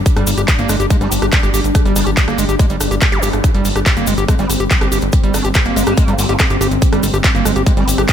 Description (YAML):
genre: psychedelic trance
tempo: 142 BPM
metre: 4/4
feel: straight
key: G phrygian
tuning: A4 = 441 Hz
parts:
  - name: pulsing gated texture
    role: sustained chords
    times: 0.0-8.1 s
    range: G3 to D4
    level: -20 LUFS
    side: left 1 dB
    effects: chorus, built-in reverb, sidechain pumping
  - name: plucky analog bass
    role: bass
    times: 0.0-8.1 s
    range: G1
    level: -19 LUFS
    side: equal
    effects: none
  - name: electronic kick drum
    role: drums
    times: 0.1-8.1 s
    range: none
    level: -14 LUFS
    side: equal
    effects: none
  - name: techno drum kit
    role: drums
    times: 0.1-8.1 s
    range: handclaps, hi-hat, rim click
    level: -20 LUFS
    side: equal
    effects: none
  - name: cabasa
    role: percussion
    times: 0.1-8.1 s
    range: none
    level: -26 LUFS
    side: left 5 dB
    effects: none
  - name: overdriven acid bass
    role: riff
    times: 0.2-8.0 s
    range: G3 to G4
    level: -21 LUFS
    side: moving between left 2 dB and right 5 dB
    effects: auto-pan, sidechain pumping, digital delay
  - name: vowel-sweep wobble bass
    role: second line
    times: 1.0-7.9 s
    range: Bb3 to D4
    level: -29 LUFS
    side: right 2 dB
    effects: ensemble chorus, sidechain pumping, high-pass filter, digital delay
  - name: zap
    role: sound effects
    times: 3.1-3.2 s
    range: none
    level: -26 LUFS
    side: equal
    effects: none
room: digital ambience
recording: none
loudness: -12 LUFS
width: side -9 dB against mid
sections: 0.0-8.1 A section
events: none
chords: 0.0 G5